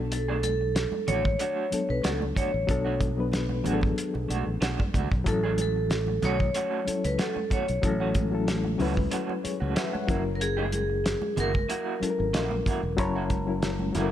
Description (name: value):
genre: lush 1970s-style soul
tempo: 93 BPM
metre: 4/4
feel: swing 54% on 16ths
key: B dorian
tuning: A4 = 440 Hz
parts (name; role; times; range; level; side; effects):
- reed electric piano; accompaniment; 0.0-14.1 s; F#3 to F#5; -31 LUFS; left 4 dB; fast tremolo
- fingered electric bass; bass; 0.0-14.1 s; E1 to C#2; -30 LUFS; equal; none
- vibraphone with hard mallets; melody; 0.1-14.1 s; G#4 to C#5; -30 LUFS; equal; none
- electric guitar through a small old amp; riff; 0.1-14.1 s; A3 to G#4; -35 LUFS; right 6 dB; tremolo
- cloth-damped thuddy drum kit; drums; 0.1-14.1 s; hi-hat, kick drum, snare drum; -29 LUFS; equal; none
- congas; percussion; 0.4-14.1 s; none; -37 LUFS; right 4 dB; none
room: light reverb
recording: none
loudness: -24 LUFS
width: side -11 dB against mid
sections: 0.0-14.1 A section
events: none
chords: 0.0 Bm7; 5.3 A6; 10.1 F#7